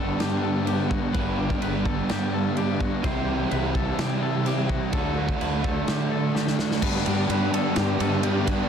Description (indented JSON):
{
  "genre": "rock, shoegaze and dream pop",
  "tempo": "127 BPM",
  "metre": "4/4",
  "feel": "straight",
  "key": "G major",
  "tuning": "A4 = 441 Hz",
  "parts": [
    { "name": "twangy electric guitar", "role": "arpeggios", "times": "0.0-8.7 s", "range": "F#4 to C5", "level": "-34 LUFS", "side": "left 10 dB", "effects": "wide subtle chorus, slapback echo" },
    { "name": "biting overdriven guitar", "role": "riff", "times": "0.0-8.7 s", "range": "G2 to E4", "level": "-28 LUFS", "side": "left 10 dB", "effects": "lush chorus" },
    { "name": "overdriven electric guitar", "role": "riff", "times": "0.0-8.7 s", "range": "G2 to G4", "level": "-27 LUFS", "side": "right 10 dB", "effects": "reverse reverb" },
    { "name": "fuzz fingered electric bass", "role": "bass", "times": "0.0-8.6 s", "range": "G1 to D3", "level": "-28 LUFS", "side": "equal", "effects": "overdrive" },
    { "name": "loose indie drum kit", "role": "drums", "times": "0.2-8.6 s", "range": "crash cymbal, kick drum, ride cymbal, snare drum", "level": "-30 LUFS", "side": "equal", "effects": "none" }
  ],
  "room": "small room ambience",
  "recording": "dense, heavily limited modern master",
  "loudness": "-22 LUFS",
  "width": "side -7 dB against mid",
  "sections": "0.0-6.8 A section; 6.8-8.7 B section",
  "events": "drum fill 6.3-6.8",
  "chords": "0.0 Gmaj7; 3.0 C6; 4.9 D; 6.8 G"
}